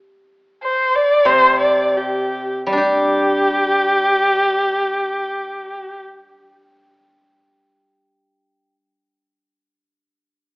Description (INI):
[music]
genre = chinese traditional, Chinese chamber ensemble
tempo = 69-101 BPM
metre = 2/4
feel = straight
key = unclear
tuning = A4 = 440 Hz
[part]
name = dark erhu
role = melody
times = 0.6-6.0 s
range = G4 to D5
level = -16 LUFS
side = equal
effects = none
[part]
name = steel-string zither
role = accompaniment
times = 1.3-8.7 s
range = C3 to G4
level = -20 LUFS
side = equal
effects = none
[sound]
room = moderate recital hall reverb, RT60 1.7 s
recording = AM radio sound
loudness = -14 LUFS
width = side -29 dB against mid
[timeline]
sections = 0.0-2.8 A section; 2.8-6.2 B section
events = slowing down 0.0-2.8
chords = none